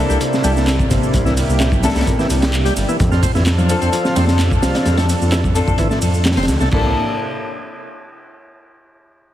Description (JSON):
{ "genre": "breakbeat, breaks", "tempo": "129 BPM", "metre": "4/4", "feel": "straight", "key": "C mixolydian", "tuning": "A4 = 440 Hz", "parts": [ { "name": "lush unison pad", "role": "sustained chords", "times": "0.0-6.9 s", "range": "C3 to A4", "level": "-24 LUFS", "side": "right 1 dB", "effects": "chorus, sidechain pumping" }, { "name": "bright tonewheel organ", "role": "riff", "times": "0.0-6.9 s", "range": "Bb2 to C4", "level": "-23 LUFS", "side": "equal", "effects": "overdrive, slow rotary speaker, tube saturation, digital delay" }, { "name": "muted chamber string section", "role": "stabs", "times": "0.0-6.9 s", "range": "Bb3 to A4", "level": "-23 LUFS", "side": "left 4 dB", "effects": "digital delay" }, { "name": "dark detuned saw bass", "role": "bass", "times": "0.0-6.9 s", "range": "F1 to F2", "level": "-18 LUFS", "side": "equal", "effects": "none" }, { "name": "crunchy breakbeat drum kit", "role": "drums", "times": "0.1-6.8 s", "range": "crash cymbal, hi-hat, kick drum, snare drum", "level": "-19 LUFS", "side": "equal", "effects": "none" }, { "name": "garage drum kit", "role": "drums", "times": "0.1-6.7 s", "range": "handclaps, ride cymbal, shaker", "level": "-28 LUFS", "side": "right 1 dB", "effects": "overdrive" }, { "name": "congas", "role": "percussion", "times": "0.4-6.7 s", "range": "none", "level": "-28 LUFS", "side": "left 3 dB", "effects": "none" } ], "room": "light reverb, studio reverb", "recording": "heavily compressed radio sound, multiband compression", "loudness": "-14 LUFS", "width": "side -12 dB against mid", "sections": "0.0-6.7 A section; 6.7-8.6 B section", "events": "drop 0.0-6.7", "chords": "0.0 C13; 3.0 F6; 6.7 C13", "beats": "0.21 0.67 | 1.14 1.60 2.07 2.53 | 3.00 3.46 3.93 4.39 | 4.86 5.33 5.79 6.25 | 6.72" }